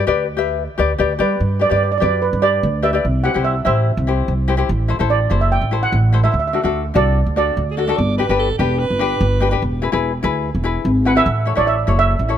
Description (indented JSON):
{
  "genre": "calypso",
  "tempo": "146 BPM",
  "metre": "4/4",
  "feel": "straight",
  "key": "G major",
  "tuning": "A4 = 440 Hz",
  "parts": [
    { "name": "tenor ukulele", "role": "accompaniment", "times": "0.0-12.4 s", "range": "D4 to E5", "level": "-20 LUFS", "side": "left 8 dB", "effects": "none" },
    { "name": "upright bass", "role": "bass", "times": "0.1-12.4 s", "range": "E1 to G3", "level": "-18 LUFS", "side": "right 1 dB", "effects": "none" },
    { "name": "steel pan", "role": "melody", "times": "1.2-7.7, 11.1-12.4 s", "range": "B4 to G5", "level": "-19 LUFS", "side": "right 6 dB", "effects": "none" },
    { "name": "breathy alto saxophone", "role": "second line", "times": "7.7-9.6 s", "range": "G4 to D5", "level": "-24 LUFS", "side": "right 4 dB", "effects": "none" }
  ],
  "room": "light reverb",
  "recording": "none",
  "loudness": "-15 LUFS",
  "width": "side -10 dB against mid",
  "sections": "0.0-1.4 A section; 1.4-12.4 B section",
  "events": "none",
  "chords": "0.0 G; 1.4 Gmaj7; 3.0 C; 4.7 Am; 6.3 D; 8.0 G; 9.6 E7; 11.3 A"
}